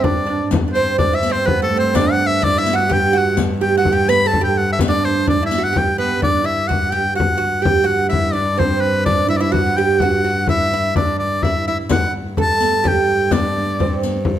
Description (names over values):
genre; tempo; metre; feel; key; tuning
medieval dance; 127 BPM; 3/4; straight; G major; A4 = 440 Hz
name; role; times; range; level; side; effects
edgy shawm; melody; 0.0-14.0 s; A4 to B5; -19 LUFS; left 1 dB; none
oud; second line; 0.0-14.0 s; A3 to B4; -20 LUFS; right 6 dB; none
warm viola da gamba; drone; 0.0-14.4 s; G2; -23 LUFS; left 1 dB; none
frame drum; percussion; 0.0-14.4 s; none; -22 LUFS; left 3 dB; none
riq; percussion; 0.5-5.9, 11.9-14.2 s; none; -26 LUFS; left 6 dB; none
room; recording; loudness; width
moderate recital hall reverb, RT60 1.3 s; close, detailed microphones; -14 LUFS; side -11 dB against mid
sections
0.0-6.2 A section; 6.2-14.4 B section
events
none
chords
none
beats
0.04 | 0.52 0.99 1.47 | 1.95 2.42 2.90 | 3.37 3.85 4.32 | 4.80 5.27 5.75 | 6.22 6.69 7.17 | 7.64 8.12 8.59 | 9.06 9.54 10.01 | 10.48 10.95 11.43 | 11.90 12.37 12.84 | 13.31 13.79 14.26